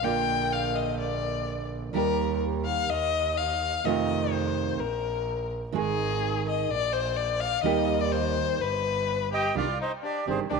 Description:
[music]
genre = tango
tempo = 126 BPM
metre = 4/4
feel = rubato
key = Eb major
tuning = A4 = 444 Hz
[part]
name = warm violin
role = second line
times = 0.0-10.6 s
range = C4 to G5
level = -28 LUFS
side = left 8 dB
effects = none
[part]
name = nylon-string guitar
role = accompaniment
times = 0.0-10.6 s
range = C3 to Ab4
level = -29 LUFS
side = right 12 dB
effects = none
[part]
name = clear double bass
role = bass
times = 0.0-10.6 s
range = G1 to F2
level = -33 LUFS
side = right 1 dB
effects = none
[part]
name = bandoneon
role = melody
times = 9.3-10.6 s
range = G4 to G5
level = -29 LUFS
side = right 6 dB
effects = none
[sound]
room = wet plate reverb, RT60 2.4 s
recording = 1960s-style stereo with parts hard left and right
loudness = -25 LUFS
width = side -4 dB against mid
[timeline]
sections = 0.0-9.6 A section; 9.6-10.6 B section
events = violin solo 0.0-9.6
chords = 0.0 Bb; 1.9 Eb; 2.9 Ebsus2; 3.8 F7; 4.8 N.C.; 5.7 Ab5; 6.7 Bbadd9; 7.6 Eb; 8.6 G; 9.6 Cmadd9

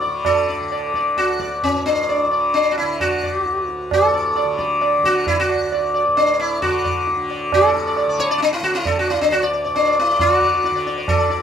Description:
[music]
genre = indian classical, Hindustani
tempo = 133 BPM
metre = 4/4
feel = straight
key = D raga hamsadhwani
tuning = A4 = 438 Hz
[part]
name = sitar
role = melody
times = 0.0-11.4 s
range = C#4 to D5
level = -18 LUFS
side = left 2 dB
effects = none
[part]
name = tanpura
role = drone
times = 0.0-11.4 s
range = D2 to D3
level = -28 LUFS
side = left 1 dB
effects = none
[part]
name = tabla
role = percussion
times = 0.0-11.4 s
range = none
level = -22 LUFS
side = right 6 dB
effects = none
[sound]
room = moderate studio reverb, RT60 0.6 s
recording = minimal, uncompressed stereo recording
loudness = -16 LUFS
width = side -8 dB against mid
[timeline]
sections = 0.0-7.5 A section; 7.5-11.4 B section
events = speeding up 0.0-11.4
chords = none

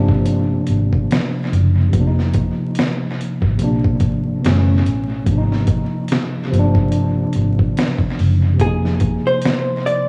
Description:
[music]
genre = lo-fi hip hop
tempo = 72 BPM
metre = 4/4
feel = swing 57% on 16ths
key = F dorian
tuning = A4 = 440 Hz
[part]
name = tine electric piano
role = accompaniment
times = 0.0-10.1 s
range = B2 to Eb4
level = -22 LUFS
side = equal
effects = overdrive, cassette tape, dub echo
[part]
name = vintage muted fingered electric bass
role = bass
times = 0.0-9.2 s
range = F1 to Bb1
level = -19 LUFS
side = equal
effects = none
[part]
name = dusty soul sampler-style drum kit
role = drums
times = 0.1-10.1 s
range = hi-hat, kick drum, snare drum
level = -22 LUFS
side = equal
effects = dub echo
[part]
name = vintage hollow-body jazz guitar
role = melody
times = 8.6-10.1 s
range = Ab4 to D5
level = -22 LUFS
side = equal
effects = dub echo
[sound]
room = little or no reverb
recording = echo-heavy mix, vinyl crackle, small room ambience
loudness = -17 LUFS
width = mono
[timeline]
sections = 0.0-10.1 A section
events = break 0.0-1.9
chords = 0.0 Gm7; 1.9 F7(no3); 3.6 Bb9; 4.4 Gbm7; 5.3 Fm7/Ab; 6.5 Gm7; 8.6 Fm7

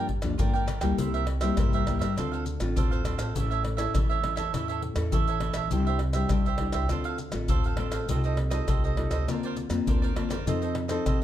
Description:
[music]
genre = samba and choro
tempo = 101 BPM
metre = 4/4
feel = straight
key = D minor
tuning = A4 = 440 Hz
[part]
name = cavaquinho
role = accompaniment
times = 0.0-11.2 s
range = D4 to G5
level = -32 LUFS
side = right 8 dB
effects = none
[part]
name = nylon-string guitar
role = accompaniment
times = 0.0-11.2 s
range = G2 to A4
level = -30 LUFS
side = left 3 dB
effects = none
[part]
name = upright bass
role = bass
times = 0.0-11.2 s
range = A1 to G2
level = -31 LUFS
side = equal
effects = none
[part]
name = surdo, pandeiro, maracas and tamborim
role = percussion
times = 0.1-11.2 s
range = none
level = -29 LUFS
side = left 1 dB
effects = none
[sound]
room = light reverb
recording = none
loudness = -25 LUFS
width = side -12 dB against mid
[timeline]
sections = 0.0-11.2 A section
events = none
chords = 0.0 Gm7; 1.0 C7; 2.2 Dm7; 3.4 A; 5.7 Cadd9; 6.9 Dm7; 8.1 F7/C; 9.3 Bbadd9/D; 10.5 F7

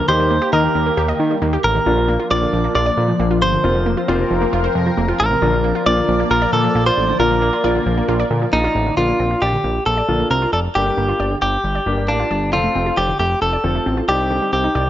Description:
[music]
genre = synth-pop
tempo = 135 BPM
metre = 4/4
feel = straight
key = Bb major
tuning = A4 = 440 Hz
[part]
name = direct-recorded clean electric guitar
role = melody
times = 0.0-14.9 s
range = D4 to D5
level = -18 LUFS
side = equal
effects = analog delay
[part]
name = phased analog pad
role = sustained chords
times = 0.0-9.0 s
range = Eb3 to D5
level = -23 LUFS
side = left 2 dB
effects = phaser, chorus
[part]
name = wide unison pluck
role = arpeggios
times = 0.0-14.9 s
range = C3 to Eb5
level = -24 LUFS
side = right 2 dB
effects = analog delay
[part]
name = warm grand piano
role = accompaniment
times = 0.1-14.8 s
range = Bb3 to Bb4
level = -23 LUFS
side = left 3 dB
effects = none
[part]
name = fat analog bass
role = bass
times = 0.1-14.9 s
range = F1 to Eb3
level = -20 LUFS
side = equal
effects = none
[sound]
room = light reverb, digital ambience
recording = dry, gritty hardware recording, nothing above 7.6 kHz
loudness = -15 LUFS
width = side -12 dB against mid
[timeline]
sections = 0.0-9.0 A section; 9.0-14.9 B section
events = none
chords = 0.1 Eb; 1.9 Bb; 3.6 Fsus4; 5.4 Bb; 9.0 Bbadd9; 10.8 Gm; 12.5 F6; 14.1 Cmadd9

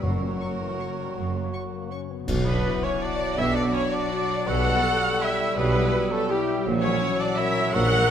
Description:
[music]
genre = classical, orchestral ballroom waltz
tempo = 163 BPM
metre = 3/4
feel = uneven beats, rubato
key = B minor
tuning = A4 = 439 Hz
[part]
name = mellow cor anglais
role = second line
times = 0.0-8.1 s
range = G3 to F#4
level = -34 LUFS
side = right 3 dB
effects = none
[part]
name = mellow hollow small flute group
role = second line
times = 0.0-8.1 s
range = C#6 to E6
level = -37 LUFS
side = right 2 dB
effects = none
[part]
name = warm studio violin section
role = second line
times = 0.0-8.1 s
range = G4 to F#5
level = -36 LUFS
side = left 2 dB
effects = none
[part]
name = mellow bassoon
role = accompaniment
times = 0.0-8.1 s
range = F#3 to G3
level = -32 LUFS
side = right 2 dB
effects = none
[part]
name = rich chamber viola section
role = accompaniment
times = 0.0-8.1 s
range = A#3 to F#5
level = -29 LUFS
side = equal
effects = none
[part]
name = mellow French horn section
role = sustained chords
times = 0.0-8.1 s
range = E3 to B4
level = -32 LUFS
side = left 5 dB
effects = none
[part]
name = concert harp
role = arpeggios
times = 0.0-8.1 s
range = F#2 to D6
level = -32 LUFS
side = left 9 dB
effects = none
[part]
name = clear symphonic cello section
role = bass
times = 0.0-8.0 s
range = F#2 to B2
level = -31 LUFS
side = right 2 dB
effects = none
[part]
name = rich symphonic double bass section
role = bass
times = 0.0-8.0 s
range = F#1 to B1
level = -31 LUFS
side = right 2 dB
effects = none
[part]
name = timpani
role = percussion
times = 0.0-0.6 s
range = F#2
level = -32 LUFS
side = equal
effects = none
[part]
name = rich symphonic violin section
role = melody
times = 0.4-8.1 s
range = B3 to C#6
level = -34 LUFS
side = left 1 dB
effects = none
[part]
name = clear tuba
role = bass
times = 2.3-8.0 s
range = A#1 to B1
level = -32 LUFS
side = right 4 dB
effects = none
[part]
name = clash cymbals and concert bass drum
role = percussion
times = 2.3-3.0 s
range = none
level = -34 LUFS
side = equal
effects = none
[part]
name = dark trumpet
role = stabs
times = 2.5-8.1 s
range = G4 to F#5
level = -31 LUFS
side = right 1 dB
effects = none
[sound]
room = moderate concert hall reverb, RT60 2.5 s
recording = none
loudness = -22 LUFS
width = side -9 dB against mid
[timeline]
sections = 0.0-2.3 A section; 2.3-8.1 B section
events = band accent 2.3-2.6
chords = 0.0 F#; 2.3 Bm; 4.5 C#m7b5/B; 6.7 F#7/A#

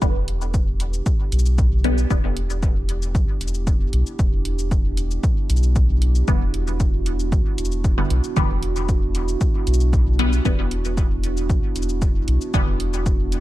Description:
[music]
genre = dub techno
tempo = 115 BPM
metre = 4/4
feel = straight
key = E minor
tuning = A4 = 440 Hz
[part]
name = dark analog pad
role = sustained chords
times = 0.0-13.4 s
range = B3 to G4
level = -30 LUFS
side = right 4 dB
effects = lush chorus, sidechain pumping
[part]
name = filtered dub chord stab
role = stabs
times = 0.0-2.3, 6.3-12.8 s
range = D3 to B3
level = -26 LUFS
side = left 1 dB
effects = phaser, sidechain pumping, dub echo
[part]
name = warm sub bass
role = bass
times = 0.0-13.4 s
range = E1 to B1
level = -21 LUFS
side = equal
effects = sidechain pumping
[part]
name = electronic cabasa and hi-hat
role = drums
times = 0.0-13.4 s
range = none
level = -35 LUFS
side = left 2 dB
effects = none
[part]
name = electronic kick drum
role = drums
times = 0.0-13.2 s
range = none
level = -21 LUFS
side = equal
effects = none
[sound]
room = digital ambience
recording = dark, warm production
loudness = -18 LUFS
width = side -15 dB against mid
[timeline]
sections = 0.0-13.4 A section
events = none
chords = 0.0 Em7

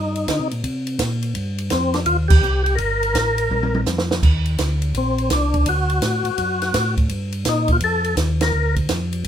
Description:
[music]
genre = soul jazz organ trio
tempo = 167 BPM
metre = 4/4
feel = swing 66% on 8ths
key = G minor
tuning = A4 = 440 Hz
[part]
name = percussive tonewheel organ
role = melody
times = 0.0-8.8 s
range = C4 to Bb4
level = -20 LUFS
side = left 1 dB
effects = slow rotary speaker, overdrive, chorus vibrato
[part]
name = mellow tonewheel organ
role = bass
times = 0.0-9.3 s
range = G1 to D3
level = -22 LUFS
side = equal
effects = slow rotary speaker
[part]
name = compact cocktail drum kit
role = drums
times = 0.2-9.3 s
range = crash cymbal, hi-hat, kick drum, ride cymbal, snare drum, toms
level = -22 LUFS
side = right 2 dB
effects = none
[sound]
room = light reverb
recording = minimal, uncompressed stereo recording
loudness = -17 LUFS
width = side -10 dB against mid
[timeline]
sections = 0.0-9.3 A section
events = band accent 2.3, 8.4; drum fill 3.5-4.2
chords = 0.0 Cm7; 2.8 Gm7; 4.2 Eb5; 5.7 D; 7.1 Gm7

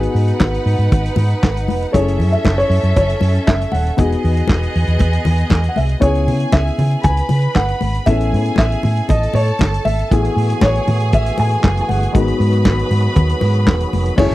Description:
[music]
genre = disco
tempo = 118 BPM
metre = 4/4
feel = straight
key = F# dorian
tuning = A4 = 440 Hz
[part]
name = clear studio string section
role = second line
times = 0.0-14.3 s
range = B3 to B5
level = -24 LUFS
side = right 2 dB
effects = none
[part]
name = warm baby grand piano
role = accompaniment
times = 0.0-14.3 s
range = G#3 to A4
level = -24 LUFS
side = left 4 dB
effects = none
[part]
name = hollow-body short-scale fingered electric bass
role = bass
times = 0.0-14.3 s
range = D#1 to C#3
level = -16 LUFS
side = equal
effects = none
[part]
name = warm soul drum kit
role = drums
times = 0.0-14.3 s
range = crash cymbal, handclaps, hi-hat, kick drum, snare drum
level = -15 LUFS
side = equal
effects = none
[part]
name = congas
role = percussion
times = 0.4-14.3 s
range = none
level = -24 LUFS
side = left 4 dB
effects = none
[part]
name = warm grand piano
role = melody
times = 1.9-14.3 s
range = C#5 to G#5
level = -21 LUFS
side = equal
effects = none
[part]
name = tonewheel organ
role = sustained chords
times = 10.1-14.3 s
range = D#3 to G#4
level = -25 LUFS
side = right 1 dB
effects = overdrive, fast rotary speaker
[sound]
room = studio reverb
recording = dry, close 1970s-style studio recording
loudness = -13 LUFS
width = side -16 dB against mid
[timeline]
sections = 0.0-6.0 A section; 6.0-14.2 B section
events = none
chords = 0.0 G#m7; 1.9 F#m9; 4.0 Emaj9; 6.0 C#m7; 8.1 Amaj7; 10.1 F#m11/A; 12.1 G#m7

